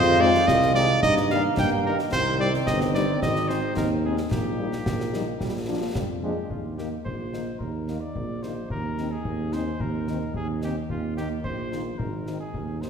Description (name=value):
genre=military-style march for wind band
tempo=109 BPM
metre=2/4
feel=straight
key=Eb major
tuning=A4 = 439 Hz
part: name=warm cornet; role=melody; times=0.0-12.9 s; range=F4 to G5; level=-29 LUFS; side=equal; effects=none
part: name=clear euphonium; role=second line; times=0.0-6.2 s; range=Bb3 to F4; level=-27 LUFS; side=right 3 dB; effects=none
part: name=clear trombone section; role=sustained chords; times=0.0-6.3 s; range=Eb3 to Eb4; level=-30 LUFS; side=right 2 dB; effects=none
part: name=mellow tuba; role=bass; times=0.0-12.9 s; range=G1 to G2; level=-27 LUFS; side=equal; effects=none
part: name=mellow French horn section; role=accompaniment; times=0.2-12.9 s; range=Eb3 to Eb4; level=-33 LUFS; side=left 4 dB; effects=none
part: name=concert snare drum, concert bass drum and clash cymbals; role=drums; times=0.3-12.9 s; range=none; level=-32 LUFS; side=left 2 dB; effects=none
room=wet scoring stage reverb, RT60 1.8 s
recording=recorded in a church or concert hall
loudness=-23 LUFS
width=side -7 dB against mid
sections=0.0-6.5 A section; 6.5-12.9 B section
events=none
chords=0.0 Fm7; 1.0 Eb/G; 2.1 Cm; 3.2 Ab; 4.3 Eb/Bb; 5.4 Bb; 6.5 Eb5; 12.0 Ab